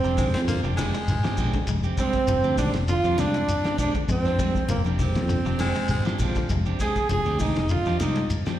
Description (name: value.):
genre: afrobeat.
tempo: 100 BPM.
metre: 4/4.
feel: straight.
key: F dorian.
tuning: A4 = 439 Hz.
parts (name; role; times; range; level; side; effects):
breathy trombone; melody; 0.0-8.3 s; Bb3 to Ab4; -26 LUFS; right 2 dB; slapback echo.
raspy tenor saxophone; second line; 0.0-8.3 s; Bb3 to Ab4; -34 LUFS; right 4 dB; slapback echo.
electric guitar at the edge of break-up; arpeggios; 0.0-8.6 s; D3 to Ab3; -34 LUFS; left 6 dB; slapback echo.
electric guitar at the edge of break-up; stabs; 0.0-8.6 s; Ab3 to G4; -33 LUFS; right 9 dB; slapback echo.
fingered electric bass; bass; 0.0-8.2 s; F1 to F2; -26 LUFS; left 1 dB; none.
shekere; percussion; 0.0-8.6 s; none; -32 LUFS; left 1 dB; none.
raspy baritone saxophone; second line; 0.2-1.8, 5.6-6.6 s; F3 to C4; -32 LUFS; left 2 dB; slapback echo.
cloth-damped thuddy drum kit; drums; 0.2-8.6 s; hi-hat, kick drum, ride cymbal, snare drum; -30 LUFS; left 1 dB; none.
congas; percussion; 0.2-8.6 s; none; -33 LUFS; left 1 dB; none.
room: light reverb, small room ambience.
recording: live gig heard through the venue's PA, recital hall reverb.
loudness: -21 LUFS.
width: side -12 dB against mid.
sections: 0.0-8.6 A section.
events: none.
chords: 0.0 Fm69.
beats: 0.48 1.08 | 1.68 2.28 2.88 3.48 | 4.09 4.69 5.29 5.89 | 6.49 7.09 7.70 8.30.